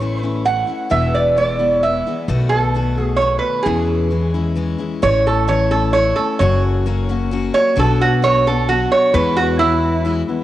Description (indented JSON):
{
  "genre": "honky-tonk and classic country",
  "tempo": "131 BPM",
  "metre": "3/4",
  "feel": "straight",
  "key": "A major",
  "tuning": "A4 = 440 Hz",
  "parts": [
    { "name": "lap resonator guitar", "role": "melody", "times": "0.0-10.4 s", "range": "E4 to F#5", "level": "-17 LUFS", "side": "right 3 dB", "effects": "cassette tape" },
    { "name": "picked steel-string acoustic guitar", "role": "accompaniment", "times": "0.0-10.4 s", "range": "E2 to F#4", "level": "-22 LUFS", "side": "left 6 dB", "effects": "none" },
    { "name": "upright bass", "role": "bass", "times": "0.0-10.2 s", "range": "E1 to E2", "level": "-20 LUFS", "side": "equal", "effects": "none" }
  ],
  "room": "moderate lush hall reverb, RT60 3.4 s",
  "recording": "home recording on cassette",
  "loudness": "-14 LUFS",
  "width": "side -14 dB against mid",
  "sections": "0.0-5.0 A section; 5.0-10.4 B section",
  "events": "resonator guitar played with a steel bar solo 5.0-10.4",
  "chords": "0.0 A; 0.9 E; 2.3 B7; 3.7 E6; 5.0 A; 6.4 F#; 7.8 Bm; 9.1 E"
}